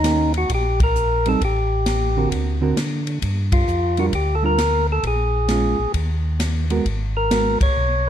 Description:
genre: soul jazz organ trio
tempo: 132 BPM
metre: 4/4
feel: swing 66% on 8ths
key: unclear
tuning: A4 = 440 Hz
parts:
  - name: percussive tonewheel organ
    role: melody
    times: 0.0-8.1 s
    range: Eb4 to Db5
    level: -21 LUFS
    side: left 1 dB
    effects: overdrive, stopped rotary speaker, plate reverb
  - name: hollow-body jazz guitar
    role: accompaniment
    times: 0.0-7.6 s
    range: D3 to Bb4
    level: -23 LUFS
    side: right 5 dB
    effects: none
  - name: mellow tonewheel organ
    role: bass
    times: 0.0-8.1 s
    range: Ab1 to D3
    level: -22 LUFS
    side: equal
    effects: chorus vibrato, slow rotary speaker
  - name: swinging big-band drum kit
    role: drums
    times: 0.0-7.7 s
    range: hi-hat, kick drum, ride cymbal, snare drum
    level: -25 LUFS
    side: equal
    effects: none
room: light reverb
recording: dark, warm production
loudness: -18 LUFS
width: side -10 dB against mid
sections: 0.0-8.1 A section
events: band accent 0.7, 3.5, 7.5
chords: 0.0 Eb7; 1.4 Am7; 2.3 Daug7; 3.2 Gm7; 5.0 Bbm7; 5.9 Eb5; 6.9 Abm9

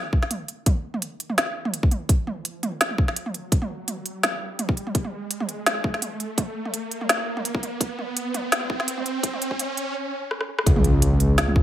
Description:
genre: half-time drum and bass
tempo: 168 BPM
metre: 4/4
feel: swing 54% on 16ths, half-time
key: unclear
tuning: A4 = 441 Hz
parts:
  - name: riser and impact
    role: sound effects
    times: 1.3-11.6 s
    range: none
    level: -29 LUFS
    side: equal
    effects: none
  - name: electronic kick drum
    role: drums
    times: 0.1-11.6 s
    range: none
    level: -20 LUFS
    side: equal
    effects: small room ambience
  - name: organic electronic drum kit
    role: drums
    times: 0.2-11.5 s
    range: hi-hat, rim click, snare drum, toms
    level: -24 LUFS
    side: equal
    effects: overdrive, high-pass filter on hats, small room ambience, high-pass filter on snare, high-pass filter on toms
  - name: dark detuned saw bass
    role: bass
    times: 10.7-11.6 s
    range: C#2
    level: -19 LUFS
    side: equal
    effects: none
room: light reverb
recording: high-pass filter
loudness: -22 LUFS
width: side -12 dB against mid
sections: 0.0-10.7 A section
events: build-up 0.0-10.7; filter sweep 0.0-10.7; riser 1.3-10.0; drum fill 10.3-10.7; impact 10.7-11.6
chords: none

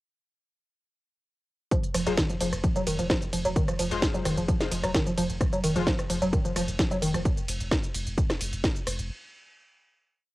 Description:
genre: driving peak-time techno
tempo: 130 BPM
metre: 4/4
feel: straight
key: F phrygian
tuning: A4 = 441 Hz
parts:
  - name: woody wave-folded pluck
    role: riff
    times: 1.7-7.2 s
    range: Eb3 to Gb3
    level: -28 LUFS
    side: equal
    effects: ensemble chorus, cassette tape, sidechain pumping, tape echo
  - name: electronic kick drum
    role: drums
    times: 1.7-8.7 s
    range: none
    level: -27 LUFS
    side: equal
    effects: cassette tape
  - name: techno drum kit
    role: drums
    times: 1.7-9.1 s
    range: hi-hat, ride cymbal, rim click, snare drum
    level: -30 LUFS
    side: equal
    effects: sidechain pumping on hats, cassette tape, sidechain pumping on cymbals
  - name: saturated sub bass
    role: bass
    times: 1.9-9.1 s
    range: F1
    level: -34 LUFS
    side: equal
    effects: tube saturation, sidechain pumping, low-pass filter
  - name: rave stab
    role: stabs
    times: 2.1-5.8 s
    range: Ab3 to C5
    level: -34 LUFS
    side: left 6 dB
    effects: chorus, built-in reverb, phaser, sidechain pumping, cassette tape, tape echo
room: light reverb, digital ambience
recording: home recording on cassette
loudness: -24 LUFS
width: side -18 dB against mid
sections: 1.7-9.1 drop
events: drop 1.7-9.1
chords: 1.7 Fm

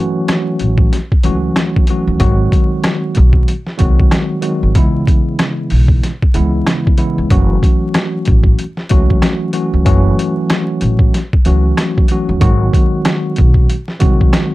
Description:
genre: hip hop, boom-bap hip-hop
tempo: 94 BPM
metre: 4/4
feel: swing 60% on 16ths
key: F# dorian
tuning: A4 = 440 Hz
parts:
  - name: tine electric piano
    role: accompaniment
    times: 0.0-14.5 s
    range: C#3 to F#4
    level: -16 LUFS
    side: equal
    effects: medium stereo tremolo, cassette tape, high-pass filter, low-pass filter
  - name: boom bap sampler-style drum kit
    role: drums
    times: 0.3-14.5 s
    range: hi-hat, kick drum, rim click, snare drum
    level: -13 LUFS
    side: equal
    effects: overdrive, vintage 12-bit sampler grit
  - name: upright bass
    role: bass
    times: 0.6-14.3 s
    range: F#1 to D#2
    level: -14 LUFS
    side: equal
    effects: none
room: little or no reverb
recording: dark, warm production, vinyl crackle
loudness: -11 LUFS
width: side -18 dB against mid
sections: 0.0-14.5 A section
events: none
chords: 0.0 F#m7; 2.2 G#7; 4.8 C#m7; 7.3 F#m7; 12.4 G#7

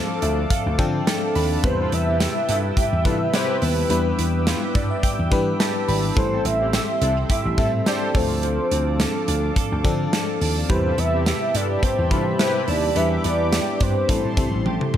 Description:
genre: 1980s-style pop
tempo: 106 BPM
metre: 4/4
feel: swing 55% on 16ths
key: A minor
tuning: A4 = 440 Hz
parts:
  - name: warm velvety synth lead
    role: melody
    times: 0.0-14.7 s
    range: B4 to E5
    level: -25 LUFS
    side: right 1 dB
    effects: chorus, ping-pong delay
  - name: Celtic harp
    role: second line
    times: 0.0-15.0 s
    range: B3 to E4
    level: -34 LUFS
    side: left 6 dB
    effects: none
  - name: FM electric piano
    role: accompaniment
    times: 0.0-15.0 s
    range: C3 to B5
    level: -26 LUFS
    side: left 3 dB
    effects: chorus
  - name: brassy analog pad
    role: sustained chords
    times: 0.0-15.0 s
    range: G4 to D6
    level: -31 LUFS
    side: equal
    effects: chorus
  - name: direct-recorded clean electric guitar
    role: riff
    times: 0.0-15.0 s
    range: E3 to A4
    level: -31 LUFS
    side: right 8 dB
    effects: ensemble chorus
  - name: vintage slap bass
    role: bass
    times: 0.2-15.0 s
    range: G1 to E3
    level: -24 LUFS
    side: equal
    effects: none
  - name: modern studio drum kit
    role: drums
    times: 0.2-15.0 s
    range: hi-hat, kick drum, snare drum, tambourine, toms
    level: -24 LUFS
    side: equal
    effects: none
  - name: analog synth brass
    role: stabs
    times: 1.8-12.6 s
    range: C4 to C5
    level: -32 LUFS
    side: left 2 dB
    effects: chorus, ping-pong delay
room: light reverb, small room ambience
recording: none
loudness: -18 LUFS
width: side -10 dB against mid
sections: 0.0-15.0 A section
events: FM electric piano fill 0.0-1.6, 4.5-6.2; drum fill 14.7-15.0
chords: 0.0 Dm7; 1.6 Cmaj7/E; 3.9 Em7; 6.2 Am7; 8.1 Dm7; 10.7 Cmaj7/E; 13.0 Em7; 14.1 Am7

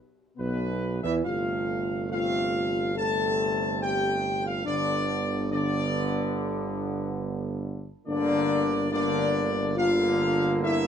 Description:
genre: classical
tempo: 70 BPM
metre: 4/4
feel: straight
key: G major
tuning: A4 = 441 Hz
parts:
  - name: warm trumpet section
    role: melody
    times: 0.4-10.9 s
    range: B4 to A5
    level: -30 LUFS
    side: right 1 dB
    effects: none
  - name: dark French horn section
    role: sustained chords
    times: 0.4-10.9 s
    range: B3 to A4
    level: -28 LUFS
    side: left 3 dB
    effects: none
  - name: dark trombone section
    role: sustained chords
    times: 0.4-10.9 s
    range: B2 to B3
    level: -31 LUFS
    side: right 2 dB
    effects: none
  - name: warm tuba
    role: bass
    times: 0.4-10.9 s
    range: G1 to E2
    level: -31 LUFS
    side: right 3 dB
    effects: none
room: light reverb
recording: dark, warm production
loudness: -24 LUFS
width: side -8 dB against mid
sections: 0.0-10.9 A section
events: none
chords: 0.0 Bsus4; 1.3 F/G; 4.7 G; 8.1 Bb/G

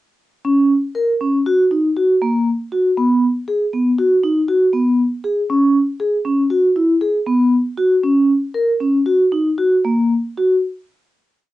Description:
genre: contemporary instrumental, chamber music in an uneven meter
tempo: 119 BPM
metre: 5/4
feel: straight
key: Eb phrygian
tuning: A4 = 440 Hz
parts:
  - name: vibraphone with soft mallets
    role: solo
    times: 0.4-10.5 s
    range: Bb3 to Bb4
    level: -14 LUFS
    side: equal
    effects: auto-pan
room: light reverb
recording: worn, warbling old tape, cassette tape, warbly pitch drift, nothing above 10.3 kHz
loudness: -14 LUFS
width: side -15 dB against mid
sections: 0.4-10.6 A section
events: slowing down 6.5-10.6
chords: none

